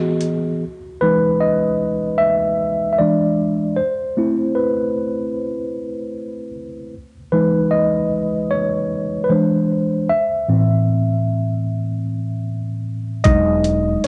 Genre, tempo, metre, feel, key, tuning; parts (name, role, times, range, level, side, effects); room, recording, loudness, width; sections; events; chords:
lo-fi hip hop; 76 BPM; 4/4; swing 63% on 16ths; E major; A4 = 443 Hz
mellow tine electric piano; accompaniment; 0.0-14.1 s; A2 to E5; -19 LUFS; equal; cassette tape
dusty soul sampler-style drum kit; drums; 0.2-0.4, 13.2-14.1 s; hi-hat, kick drum; -21 LUFS; equal; cassette tape
upright bass; bass; 13.3-13.9 s; E1; -23 LUFS; equal; tube saturation
moderate spring reverb, RT60 2.8 s; home recording on cassette, nothing above 10.6 kHz; -19 LUFS; mono
0.6-13.3 A section
tine electric piano solo 0.6-13.3
0.0 Emaj9; 0.6 Emaj7; 3.0 E7; 3.8 Amadd9; 6.9 Emaj7; 9.3 E7b13; 10.1 Am; 13.3 Emaj9